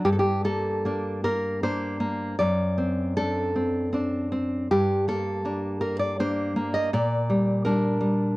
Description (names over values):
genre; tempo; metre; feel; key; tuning
romantic piece for solo classical guitar; 78 BPM; 3/4; uneven beats, rubato; G minor; A4 = 440 Hz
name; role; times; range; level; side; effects
nylon-string guitar; solo; 0.0-8.4 s; F#2 to Eb5; -23 LUFS; equal; none
room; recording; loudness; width
small room ambience; dry, close 1970s-style studio recording, faint mains hum; -23 LUFS; side -20 dB against mid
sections
0.0-8.4 A section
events
none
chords
0.0 Gm; 2.4 D7/F#; 4.7 Gm; 6.9 Gm/Bb